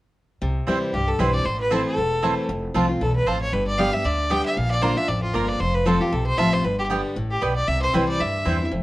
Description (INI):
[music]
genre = bluegrass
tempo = 231 BPM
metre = 4/4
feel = swing 56% on 8ths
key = C major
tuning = A4 = 440 Hz
[part]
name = picked steel-string acoustic guitar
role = accompaniment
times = 0.4-8.8 s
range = E2 to G4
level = -25 LUFS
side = left 1 dB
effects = none
[part]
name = upright bass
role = bass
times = 0.4-8.8 s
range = E1 to E2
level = -26 LUFS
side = equal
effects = none
[part]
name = mandolin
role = stabs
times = 0.7-8.6 s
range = Bb3 to Bb5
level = -27 LUFS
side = right 4 dB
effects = none
[part]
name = clear fiddle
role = melody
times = 0.9-8.7 s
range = F4 to G5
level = -24 LUFS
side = equal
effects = plate reverb
[sound]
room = moderate studio reverb, RT60 0.8 s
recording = worn, warbling old tape, cassette tape, warbly pitch drift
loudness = -20 LUFS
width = side -17 dB against mid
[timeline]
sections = 0.4-8.7 A section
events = none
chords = 0.4 C; 1.5 Am; 2.5 F; 3.5 G; 4.6 Bb; 5.6 F; 6.6 G; 7.7 C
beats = | 0.42 0.68 0.94 1.19 | 1.45 1.71 1.97 2.23 | 2.49 2.75 3.01 3.27 | 3.53 3.79 4.05 4.31 | 4.57 4.83 5.08 5.34 | 5.60 5.86 6.12 6.38 | 6.64 6.90 7.16 7.42 | 7.68 7.94 8.20 8.46 | 8.72